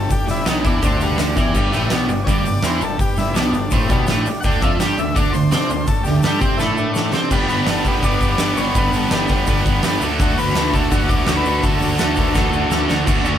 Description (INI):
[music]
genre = garage rock duo or trio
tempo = 167 BPM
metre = 4/4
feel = straight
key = unclear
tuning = A4 = 442 Hz
[part]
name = combo organ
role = melody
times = 0.0-12.8 s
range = D3 to G5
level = -24 LUFS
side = left 4 dB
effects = none
[part]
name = overdriven combo organ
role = sustained chords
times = 0.0-13.0 s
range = D4 to E5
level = -29 LUFS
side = right 1 dB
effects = none
[part]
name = crunchy overdriven guitar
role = riff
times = 0.0-13.4 s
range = G2 to C5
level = -20 LUFS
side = right 1 dB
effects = none
[part]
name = fuzz picked electric bass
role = bass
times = 0.0-13.4 s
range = G1 to C3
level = -24 LUFS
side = equal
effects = overdrive
[part]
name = oversized low-tuned drum kit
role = drums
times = 0.1-13.2 s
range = crash cymbal, hi-hat, kick drum, snare drum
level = -19 LUFS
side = equal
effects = none
[part]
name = tube shaker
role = percussion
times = 0.1-13.3 s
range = none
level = -37 LUFS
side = left 5 dB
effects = none
[sound]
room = light reverb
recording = band playing live in one room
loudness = -15 LUFS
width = side -10 dB against mid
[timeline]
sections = 0.0-7.3 A section; 7.3-13.1 B section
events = transistor combo organ solo 0.0-7.3; drum fill 6.6-7.3, 12.4-13.1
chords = 0.0 G5; 4.4 D5; 7.3 G; 10.0 D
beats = | 0.11 0.47 0.83 1.19 | 1.55 1.91 2.27 2.64 | 3.00 3.36 3.72 4.08 | 4.44 4.80 5.16 5.52 | 5.88 6.24 6.60 6.96 | 7.32 7.68 8.04 8.40 | 8.76 9.12 9.47 9.83 | 10.19 10.55 10.91 11.27 | 11.63 11.99 12.35 12.71 | 13.07